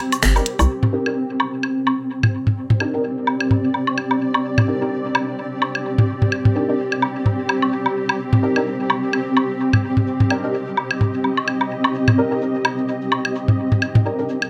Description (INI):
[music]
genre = minimal techno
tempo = 128 BPM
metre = 4/4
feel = swing 56% on 16ths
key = C minor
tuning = A4 = 440 Hz
[part]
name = granular cloud pad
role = texture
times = 0.0-14.5 s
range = C4 to G5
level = -24 LUFS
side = equal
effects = built-in reverb
[part]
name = minimal click drum kit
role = drums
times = 0.1-14.5 s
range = finger snaps, hi-hat, shaker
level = -22 LUFS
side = equal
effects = low-pass filter on perc, small room ambience, low-pass filter on hats, low-pass filter on snare
[part]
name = electronic woodblock and toms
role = percussion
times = 0.1-14.5 s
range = none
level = -21 LUFS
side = equal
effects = small room ambience
[part]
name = hollow knocking FM bass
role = bass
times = 0.2-0.7 s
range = G1 to C2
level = -18 LUFS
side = equal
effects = none
[part]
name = filtered dub chord stab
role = stabs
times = 0.4-14.3 s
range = D4 to Bb4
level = -28 LUFS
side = equal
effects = ensemble chorus, cassette tape, dub echo
[sound]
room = wet studio reverb, RT60 0.6 s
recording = none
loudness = -20 LUFS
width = mono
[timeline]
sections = 0.7-14.5 A section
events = band accent 0.2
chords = 0.0 C5; 0.7 Cm